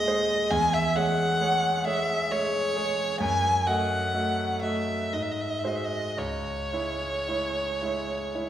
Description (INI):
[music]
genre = classical, romantic duo for violin and grand piano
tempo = 55-67 BPM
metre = 3/4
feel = rubato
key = C# minor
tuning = A4 = 442 Hz
[part]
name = warm violin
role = melody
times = 0.0-8.5 s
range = C#5 to G#5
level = -26 LUFS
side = equal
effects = none
[part]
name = bright grand piano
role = accompaniment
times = 0.0-8.5 s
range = C#2 to D#5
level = -28 LUFS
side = right 2 dB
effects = none
[sound]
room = wet recital hall reverb, RT60 1.5 s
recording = recorded in a church or concert hall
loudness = -24 LUFS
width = side -11 dB against mid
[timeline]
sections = 0.0-8.5 A section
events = none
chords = 0.0 G#/D#; 0.5 C#m/E; 3.2 D#dim/F#; 5.1 G#7; 6.2 C#m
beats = | 0.51 1.41 2.31 | 3.21 4.14 5.13 | 6.18 7.27 8.34